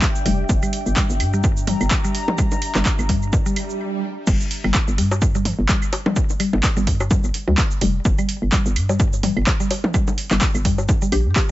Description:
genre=minimal techno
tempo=127 BPM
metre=4/4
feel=swing 56% on 16ths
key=G dorian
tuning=A4 = 440 Hz
part: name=electronic kick drum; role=drums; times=0.0-11.5 s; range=none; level=-20 LUFS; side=equal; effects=overdrive
part: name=punchy analog drum machine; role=drums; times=0.0-11.5 s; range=cabasa, crash cymbal, handclaps, hi-hat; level=-25 LUFS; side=right 1 dB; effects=overdrive
part: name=electronic claves, toms and bongos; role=percussion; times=0.0-11.2 s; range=none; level=-26 LUFS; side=equal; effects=ping-pong delay
part: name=flickering grainy texture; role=texture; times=0.0-3.8 s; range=D5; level=-42 LUFS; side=right 4 dB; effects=none
part: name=warbly tape-like pad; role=texture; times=0.0-3.8 s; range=D4 to Bb5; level=-30 LUFS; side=left 1 dB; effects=chorus, built-in reverb, sidechain pumping
part: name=mallet-like synth pluck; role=riff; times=0.3-11.4 s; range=G3 to G4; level=-26 LUFS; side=left 2 dB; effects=chorus, sidechain pumping, ping-pong delay
part: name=hollow knocking FM bass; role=bass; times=0.3-11.3 s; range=F1 to G2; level=-21 LUFS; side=equal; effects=sidechain pumping
part: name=swell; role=sound effects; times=3.5-4.3 s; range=none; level=-28 LUFS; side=right 6 dB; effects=none
room=little or no reverb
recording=nothing above 7.8 kHz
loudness=-17 LUFS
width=side -16 dB against mid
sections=0.0-4.3 A section; 4.3-11.5 B section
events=swell 3.5-4.3; stop 3.8-4.3; drop 4.3-11.5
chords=0.0 G5

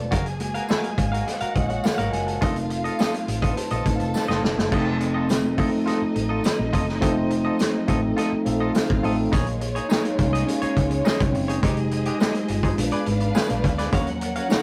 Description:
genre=lush 1970s-style soul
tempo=104 BPM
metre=4/4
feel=straight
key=unclear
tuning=A4 = 440 Hz
part: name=warm symphonic violin section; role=second line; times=0.0-14.6 s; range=Ab3 to A5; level=-34 LUFS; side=equal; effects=none
part: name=mellow tine electric piano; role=accompaniment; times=0.0-14.6 s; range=F3 to A5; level=-28 LUFS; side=equal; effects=none
part: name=vintage muted fingered electric bass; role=bass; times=0.0-14.4 s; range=E1 to Eb2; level=-30 LUFS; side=equal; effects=none
part: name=vibraphone with soft mallets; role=texture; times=0.0-13.0 s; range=C4 to D6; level=-37 LUFS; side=equal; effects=none
part: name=direct-recorded clean electric guitar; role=riff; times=0.1-14.6 s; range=Ab3 to F5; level=-32 LUFS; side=equal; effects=none
part: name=vintage drum kit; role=drums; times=0.1-14.6 s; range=crash cymbal, hi-hat, kick drum, snare drum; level=-27 LUFS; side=equal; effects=none
part: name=tambourine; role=percussion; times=0.7-14.6 s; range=none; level=-45 LUFS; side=equal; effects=none
room=moderate studio ambience, RT60 0.5 s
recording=rough rehearsal-room recording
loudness=-23 LUFS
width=mono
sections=0.0-4.7 A section; 4.7-9.3 B section; 9.3-14.6 C section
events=tine electric piano solo 0.0-4.7, 9.3-14.6; drum fill 4.1-4.7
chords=0.1 Gbmaj7; 2.4 F7; 9.3 Bbm11; 11.6 Fm9; 12.8 Bb7b9; 13.9 Ebm9

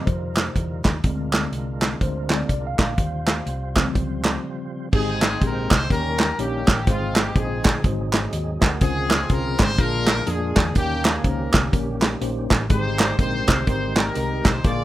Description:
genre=uptempo gospel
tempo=124 BPM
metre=4/4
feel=swing 61% on 8ths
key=Ab major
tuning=A4 = 440 Hz
part: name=mellow tine electric piano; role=accompaniment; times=0.0-14.8 s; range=Ab2 to Gb5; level=-29 LUFS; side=left 1 dB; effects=medium stereo tremolo
part: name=tonewheel organ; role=sustained chords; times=0.0-14.8 s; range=Db3 to G5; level=-34 LUFS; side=right 3 dB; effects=slow rotary speaker, chorus vibrato
part: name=hollow-body short-scale fingered electric bass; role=bass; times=0.1-14.8 s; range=Ab1 to F2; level=-27 LUFS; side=equal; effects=none
part: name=modern studio drum kit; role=drums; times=0.1-14.8 s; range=crash cymbal, hi-hat, kick drum, snare drum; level=-21 LUFS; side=equal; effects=none
part: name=group handclap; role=percussion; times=0.4-14.5 s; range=none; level=-24 LUFS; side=right 3 dB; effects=none
part: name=warm horn section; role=melody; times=4.9-14.8 s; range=Bb3 to D5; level=-27 LUFS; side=left 2 dB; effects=none
room=studio reverb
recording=rough home demo mix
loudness=-19 LUFS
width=side -14 dB against mid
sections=0.0-4.9 A section; 4.9-14.8 B section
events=tine electric piano solo 0.0-4.9; break 4.4-4.9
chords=0.0 Eb69; 1.0 Bb7; 3.0 Eb13; 4.9 Abmaj7; 5.9 Eb7; 6.9 Fm7/Ab; 7.8 Ab7; 8.8 Dbmaj7; 9.8 Bb7; 10.8 Eb7; 12.7 Abmaj7

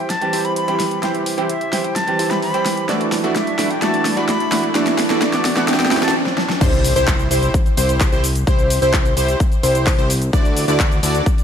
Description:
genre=EDM, festival progressive house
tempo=129 BPM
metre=4/4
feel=straight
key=unclear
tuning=A4 = 441 Hz
part: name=bright reedy silver concert flute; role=melody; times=0.0-6.1 s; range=D5 to B5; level=-24 LUFS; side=left 2 dB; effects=digital delay
part: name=supersaw stab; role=riff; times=0.0-11.2 s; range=A3 to D5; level=-22 LUFS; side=equal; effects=sidechain pumping, low-pass filter, digital delay
part: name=riser, swell and impact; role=sound effects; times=2.3-8.5 s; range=none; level=-27 LUFS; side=equal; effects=none
part: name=big-room dance drum kit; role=drums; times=0.1-11.4 s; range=crash cymbal, handclaps, hi-hat, shaker, snare drum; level=-22 LUFS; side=left 1 dB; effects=overdrive, studio ambience
part: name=clear concert grand piano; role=accompaniment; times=0.2-6.1 s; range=E3 to G4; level=-23 LUFS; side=right 4 dB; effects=sidechain pumping, digital delay
part: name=plucky unison lead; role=arpeggios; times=6.6-11.2 s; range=C5 to D5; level=-21 LUFS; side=equal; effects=wide subtle chorus, sidechain pumping, digital delay
part: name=fat analog bass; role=bass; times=6.6-11.2 s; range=C2 to D2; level=-20 LUFS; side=equal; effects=sidechain pumping
part: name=electronic kick drum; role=drums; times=6.6-11.4 s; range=none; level=-17 LUFS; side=equal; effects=studio ambience
room=moderate scoring stage reverb, RT60 1.8 s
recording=none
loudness=-15 LUFS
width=side -8 dB against mid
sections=0.0-6.6 A section; 6.6-11.4 B section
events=build-up 0.0-6.6; drum fill 0.0-6.1, 6.3-6.6; filter sweep on supersaw synth 0.0-6.6; riser 2.3-6.6; swell 5.7-6.6; stop 6.1-6.6; drop 6.6-11.4; impact 6.6-8.5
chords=0.0 C; 2.9 Dadd9; 6.6 C; 10.3 Dadd9

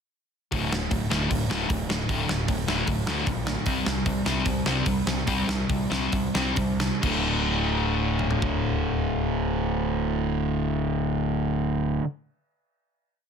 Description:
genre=punk rock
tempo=129-153 BPM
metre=4/4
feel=straight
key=unclear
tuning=A4 = 440 Hz
part: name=overdriven semi-hollow guitar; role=riff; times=0.5-12.1 s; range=D2 to C4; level=-28 LUFS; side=left 9 dB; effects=none
part: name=sludgy distorted guitar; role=riff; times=0.5-12.0 s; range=D2 to C4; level=-29 LUFS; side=right 12 dB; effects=overdrive
part: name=growling picked electric bass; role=bass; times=0.5-12.0 s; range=D1 to D2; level=-31 LUFS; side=equal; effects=overdrive
part: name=big rock drum kit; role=drums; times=0.5-8.5 s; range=crash cymbal, hi-hat, kick drum, snare drum, toms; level=-28 LUFS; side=equal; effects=none
room=little or no reverb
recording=dense, heavily limited modern master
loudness=-23 LUFS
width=side -6 dB against mid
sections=0.5-7.0 verse; 7.0-10.7 final chord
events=slowing down 3.7-7.0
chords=0.5 D5; 3.7 C5; 7.0 D5

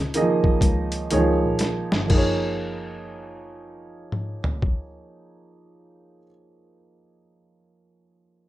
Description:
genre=R&B, neo-soul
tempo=60 BPM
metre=4/4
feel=swing 62% on 16ths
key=F# major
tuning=A4 = 440 Hz
part: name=warm baby grand piano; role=accompaniment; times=0.0-8.5 s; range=D#3 to D#5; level=-24 LUFS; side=right 2 dB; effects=none
part: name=dark double bass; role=bass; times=0.0-6.2 s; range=F#1 to C#3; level=-28 LUFS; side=left 1 dB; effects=none
part: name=boom bap sampler-style drum kit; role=drums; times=0.1-4.9 s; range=crash cymbal, hi-hat, kick drum, snare drum, toms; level=-23 LUFS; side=left 1 dB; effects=overdrive
room=light reverb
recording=rough home demo mix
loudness=-20 LUFS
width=side -15 dB against mid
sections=0.0-2.1 A section; 2.1-6.1 B section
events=slowing down 0.0-2.1; drum fill 1.1-2.1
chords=0.0 C#69; 1.1 C#; 2.1 F#maj9

